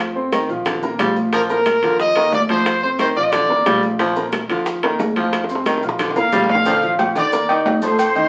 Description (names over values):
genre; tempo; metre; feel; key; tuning
latin, salsa; 180 BPM; 4/4; straight; Bb major; A4 = 441 Hz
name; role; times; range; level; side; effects
raspy baritone saxophone; second line; 0.0-8.1 s; D3 to G3; -25 LUFS; equal; none
clear baby grand piano; accompaniment; 0.0-8.3 s; D3 to Eb6; -25 LUFS; equal; none
upright bass; bass; 0.0-8.3 s; A1 to F2; -42 LUFS; equal; none
congas; percussion; 0.2-8.3 s; none; -28 LUFS; equal; none
bongos and cowbell; percussion; 0.3-8.2 s; none; -30 LUFS; equal; none
maracas; percussion; 0.3-8.3 s; none; -45 LUFS; equal; none
timbales and agogo bells; percussion; 0.3-8.3 s; none; -26 LUFS; equal; none
brilliant trumpet; melody; 1.3-3.8 s; Bb4 to Eb5; -19 LUFS; equal; none
clear trumpet section; melody; 6.2-8.3 s; C5 to D6; -21 LUFS; equal; none
room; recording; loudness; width
wet studio reverb, RT60 0.6 s; very old 78 rpm record, vinyl crackle; -18 LUFS; mono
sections
0.0-6.7 A section; 6.7-8.3 B section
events
drum fill 5.3-6.7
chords
0.0 F5; 0.7 Bb; 2.0 Ebsus2; 2.7 F5; 3.3 Bb; 4.7 Ebsus2; 5.3 F5; 6.0 Bb; 7.3 Ebsus2